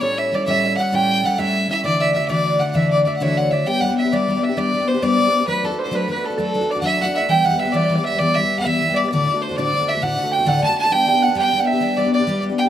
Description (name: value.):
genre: celtic folk, Celtic slide.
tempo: 132 BPM (dotted quarters).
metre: 12/8.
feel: straight.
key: D major, G major from 3.7 s.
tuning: A4 = 438 Hz.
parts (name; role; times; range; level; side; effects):
bright fiddle; melody; 0.0-12.6 s; A4 to A5; -20 LUFS; equal; none.
Celtic harp; second line; 0.0-12.7 s; A4 to A5; -23 LUFS; right 4 dB; tape echo.
picked twelve-string acoustic guitar; accompaniment; 0.0-12.7 s; D2 to A4; -20 LUFS; left 2 dB; none.
room: light reverb, small room ambience.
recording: rough home demo mix.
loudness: -16 LUFS.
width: side -10 dB against mid.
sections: 0.0-3.7 A section; 3.7-12.7 B section.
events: none.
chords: 0.0 A7; 1.8 Dadd9; 3.7 G; 5.5 D/F#; 7.3 Em; 9.1 D; 10.9 G.